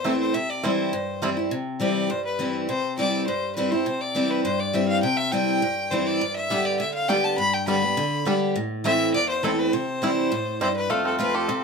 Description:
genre	bluegrass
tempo	204 BPM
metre	4/4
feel	straight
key	C major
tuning	A4 = 438 Hz
part	bluegrass banjo	melody	0.0-1.3, 6.5-11.6 s	G3 to G4	-27 LUFS	right 4 dB	none
part	clear fiddle	melody	0.0-11.6 s	A4 to B5	-26 LUFS	left 2 dB	none
part	picked steel-string acoustic guitar	accompaniment	0.0-11.6 s	E2 to G4	-24 LUFS	equal	none
part	lap resonator guitar	second line	10.9-11.6 s	F4	-27 LUFS	left 3 dB	none
room	moderate studio ambience, RT60 0.5 s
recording	minimal, uncompressed stereo recording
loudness	-21 LUFS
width	side -5 dB against mid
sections	0.0-1.5 A section; 1.5-10.9 A section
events	none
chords	0.3 C; 6.2 G; 8.6 Am; 9.7 C; 10.9 F

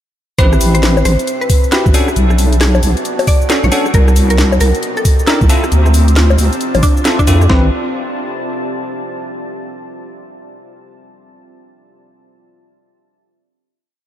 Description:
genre	UK garage, two-step garage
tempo	135 BPM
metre	4/4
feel	swing 63% on 16ths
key	A dorian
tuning	A4 = 440 Hz
part	mallet-like synth pluck	melody	0.4-7.7 s	C4 to D5	-20 LUFS	equal	chorus, tape echo
part	bell-like tine electric piano	stabs	0.4-7.7 s	C4 to B4	-20 LUFS	equal	analog chorus, tape echo
part	deep soft wobble bass	bass	0.4-7.7 s	A1 to F2	-11 LUFS	equal	chorus, tube saturation
part	boom bap sampler-style drum kit	drums	0.4-7.6 s	kick drum, snare drum	-12 LUFS	equal	studio reverb
part	house drum kit	drums	0.4-7.5 s	bongos, cabasa, hi-hat, rim click, snare drum	-19 LUFS	left 2 dB	overdrive, studio reverb
part	deep dark ambient pad	texture	1.1-9.2 s	B3 to Bb5	-23 LUFS	equal	chorus, built-in reverb, sidechain pumping
room	light reverb, digital ambience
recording	none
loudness	-10 LUFS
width	side -12 dB against mid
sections	0.4-7.5 drop; 7.5-9.3 final chord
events	drop 0.4-7.5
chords	0.4 Am7; 1.9 Bm7; 3.9 Cm7; 5.5 Dm7; 7.5 Am7

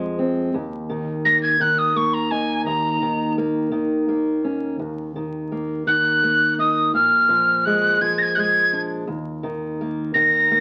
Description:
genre	acoustic folk duo or small band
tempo	56 BPM (dotted quarters)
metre	6/8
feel	straight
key	Eb minor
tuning	A4 = 439 Hz
part	fingerpicked steel-string acoustic guitar	accompaniment	0.0-10.6 s	Eb2 to Ab4	-26 LUFS	equal	none
part	fingered electric bass	bass	0.0-10.6 s	Bb1 to F2	-40 LUFS	equal	none
part	breathy tin whistle	melody	1.3-10.6 s	Ab5 to Bb6	-19 LUFS	equal	none
room	moderate club reverb, RT60 0.9 s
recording	very old 78 rpm record, vinyl crackle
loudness	-20 LUFS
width	mono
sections	0.0-4.8 A section; 4.8-10.6 B section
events	tin whistle solo 0.0-4.8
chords	0.0 Fm; 0.5 Eb5; 4.8 Ebm; 6.9 Bb7; 9.1 Eb5

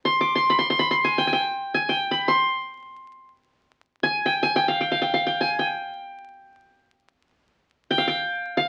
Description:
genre	Arabic maqam ensemble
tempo	free time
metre	none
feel	none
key	unclear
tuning	A4 = 443 Hz
part	qanun	solo	0.1-8.7 s	F5 to D6	-23 LUFS	equal	none
room	wet studio reverb, RT60 0.6 s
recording	very old 78 rpm record, vinyl crackle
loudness	-23 LUFS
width	mono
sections	0.0-8.7 A section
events	none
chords	none

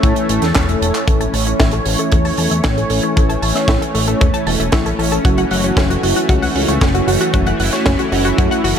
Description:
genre	italo disco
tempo	115 BPM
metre	4/4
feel	straight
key	unclear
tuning	A4 = 440 Hz
part	warm analog pad	sustained chords	0.0-8.8 s	E3 to C#5	-19 LUFS	left 1 dB	chorus
part	mellow synth brass	stabs	0.0-8.6 s	A3 to A4	-22 LUFS	right 3 dB	chorus, ping-pong delay
part	fat analog bass	bass	0.0-8.7 s	E1 to A2	-20 LUFS	equal	none
part	kick drum	drums	0.0-8.5 s	none	-16 LUFS	equal	none
part	tight funk drum kit	drums	0.0-8.8 s	handclaps, hi-hat, snare drum	-21 LUFS	right 2 dB	none
part	analog pluck	arpeggios	1.1-8.7 s	C#4 to A5	-22 LUFS	left 3 dB	chorus, cassette tape, ping-pong delay
room	light reverb, studio ambience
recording	none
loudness	-13 LUFS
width	side -8 dB against mid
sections	0.0-1.1 A section; 1.1-8.8 B section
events	drum fill 0.6-1.1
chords	0.0 A; 5.3 F#m7

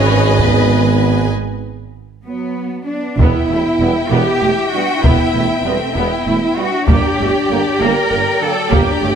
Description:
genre	cinematic, epic orchestral film score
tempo	65 BPM (dotted quarters)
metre	6/8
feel	straight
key	E minor from 3.2 s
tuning	A4 = 440 Hz
part	warm symphonic violin section	melody	0.0-9.2 s	Cb5 to G5	-25 LUFS	left 5 dB	none
part	clear chamber violin section	second line	0.0-9.2 s	D5 to Ab5	-24 LUFS	left 1 dB	none
part	warm symphonic viola section	accompaniment	0.0-9.1 s	A3 to Cb5	-21 LUFS	right 1 dB	none
part	warm French horn section	sustained chords	0.0-9.2 s	F#3 to G4	-22 LUFS	left 4 dB	none
part	clear tuba	bass	0.0-9.2 s	E1 to Ab1	-22 LUFS	right 4 dB	none
part	warm symphonic cello section	bass	0.0-9.2 s	Ab2 to Bb4	-18 LUFS	right 2 dB	none
part	warm symphonic double bass section	bass	0.0-9.1 s	E1 to Ab1	-22 LUFS	right 5 dB	none
part	taiko ensemble	drums	0.4-9.2 s	none	-15 LUFS	equal	none
part	clear trombone section	sustained chords	3.8-8.5 s	D3 to B3	-26 LUFS	right 5 dB	none
room	moderate scoring stage reverb, RT60 1.4 s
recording	none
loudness	-12 LUFS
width	side -8 dB against mid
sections	0.0-3.2 A section; 3.2-9.2 B section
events	break 1.3-3.2; drum fill 2.3-3.2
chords	0.0 Abm; 1.3 N.C.; 2.3 B5/F#; 3.2 Em; 6.9 Gm

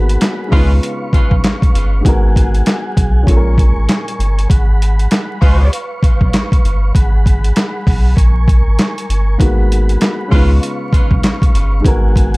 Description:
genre	hip hop, boom-bap hip-hop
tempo	98 BPM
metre	4/4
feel	swing 61% on 16ths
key	G# dorian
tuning	A4 = 439 Hz
part	dark upright piano	accompaniment	0.0-4.5, 9.4-12.4 s	G#2 to A#4	-21 LUFS	left 1 dB	high-pass filter, low-pass filter
part	mellow tonewheel organ	sustained chords	0.0-12.4 s	G#4 to C#6	-25 LUFS	right 1 dB	chorus vibrato, lush chorus, high-pass filter, low-pass filter
part	warm sub bass	bass	0.0-12.4 s	G1 to C#2	-13 LUFS	equal	none
part	boom bap sampler-style drum kit	drums	0.1-12.4 s	handclaps, hi-hat, kick drum, snare drum	-13 LUFS	equal	none
part	warm horn section	stabs	0.5-0.7, 5.4-5.7, 10.3-10.5 s	G#3 to B4	-26 LUFS	right 1 dB	high-pass filter, low-pass filter, digital delay
room	small room reverb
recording	dark, warm production, vinyl crackle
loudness	-11 LUFS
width	side -24 dB against mid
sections	0.0-12.4 A section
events	none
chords	0.0 G#m7; 0.5 C#7; 2.1 G#m7; 3.3 A#m7; 4.5 G#m7; 5.4 C#7; 6.9 G#m7; 8.2 A#m7; 9.4 G#m7; 10.3 C#7; 11.8 G#m7

